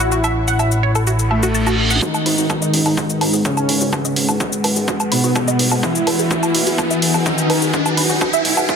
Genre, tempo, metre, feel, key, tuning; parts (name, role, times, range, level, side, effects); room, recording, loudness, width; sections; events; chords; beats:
melodic techno; 126 BPM; 4/4; straight; G# phrygian; A4 = 443 Hz
soft supersaw; melody; 0.0-8.1 s; B2 to E4; -20 LUFS; equal; sidechain pumping, low-pass filter, ping-pong delay
dark analog pad; sustained chords; 0.0-8.8 s; G#3 to B5; -25 LUFS; left 1 dB; chorus, sidechain pumping
tight sequenced synth; arpeggios; 0.0-8.8 s; F#4 to B5; -24 LUFS; right 1 dB; chorus, phaser, sidechain pumping, tape echo
fat analog bass; bass; 0.0-8.7 s; E1 to B1; -22 LUFS; equal; sidechain pumping, high-pass filter
electronic shaker, woodblock and hi-hat; drums; 0.0-8.8 s; -21 LUFS; right 1 dB; overdrive, high-pass filter on perc, high-pass filter on hats
reverse cymbal and riser; sound effects; 1.3-8.8 s; -24 LUFS; right 1 dB
electronic kick drum; drums; 2.0-8.8 s; -24 LUFS; equal; high-pass filter on kick, high-pass filter on room
light reverb; dense, heavily limited modern master; -14 LUFS; side -6 dB against mid
0.0-2.0 A section; 2.0-8.8 B section
reverse cymbal 1.3-2.0; build-up 2.0-8.8; riser 2.0-8.8; filter sweep on synth arpeggio sound 2.0-8.8
0.0 A6; 2.0 G#m7; 5.8 Eadd9
| 0.12 0.59 1.07 1.55 | 2.02 2.50 2.97 3.45 | 3.93 4.40 4.88 5.36 | 5.83 6.31 6.78 7.26 | 7.74 8.21 8.69